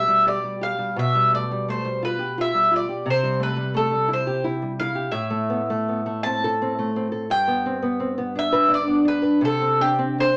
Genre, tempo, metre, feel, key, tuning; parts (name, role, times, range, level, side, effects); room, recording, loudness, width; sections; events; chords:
romantic duo for mandolin and classical guitar; 51-60 BPM (dotted quarters); 6/8; rubato; C major, A minor from 5.1 s; A4 = 440 Hz
mandolin; melody; 0.0-10.4 s; G4 to A5; -24 LUFS; equal
nylon-string guitar; accompaniment; 0.0-10.4 s; G2 to B4; -26 LUFS; equal
moderate studio ambience, RT60 0.5 s; -22 LUFS; mono
0.0-10.4 A section
0.0 G/B; 1.0 G7/B; 3.1 C; 5.1 Am; 7.3 G; 9.4 Csus2